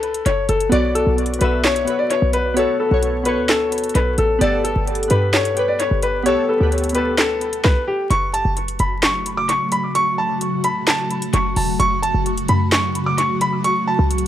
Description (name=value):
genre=hip hop, trap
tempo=130 BPM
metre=4/4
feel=half-time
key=F# phrygian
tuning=A4 = 440 Hz
part: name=clear concert grand piano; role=melody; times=0.0-14.1 s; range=G4 to D6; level=-19 LUFS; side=left 1 dB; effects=analog delay
part: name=short 808-style bass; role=bass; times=0.0-14.3 s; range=E1 to G2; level=-21 LUFS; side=equal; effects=none
part: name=trap drum kit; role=drums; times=0.0-14.3 s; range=handclaps, hi-hat, kick drum, snare drum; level=-22 LUFS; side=equal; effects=analog delay
part: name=glassy digital keys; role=accompaniment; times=0.7-7.8 s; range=B3 to E5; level=-22 LUFS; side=right 1 dB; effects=chorus, analog delay
part: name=ethereal airy pad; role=sustained chords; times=8.6-14.3 s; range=C#3 to F#4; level=-24 LUFS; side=equal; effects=ensemble chorus, built-in reverb, tremolo
room=light reverb, digital ambience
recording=echo-heavy mix, vinyl crackle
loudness=-16 LUFS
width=side -11 dB against mid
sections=0.0-8.1 A section; 8.1-14.3 B section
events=break 0.0-0.7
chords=0.0 F#m; 0.7 Bm; 4.4 Gadd9; 8.1 F#m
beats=0.26 | 0.72 1.18 1.64 2.10 | 2.57 3.03 3.49 3.95 | 4.41 4.88 5.34 5.80 | 6.26 6.72 7.18 7.64 | 8.11 8.57 9.03 9.49 | 9.95 10.41 10.88 11.34 | 11.80 12.26 12.72 13.18 | 13.64 14.11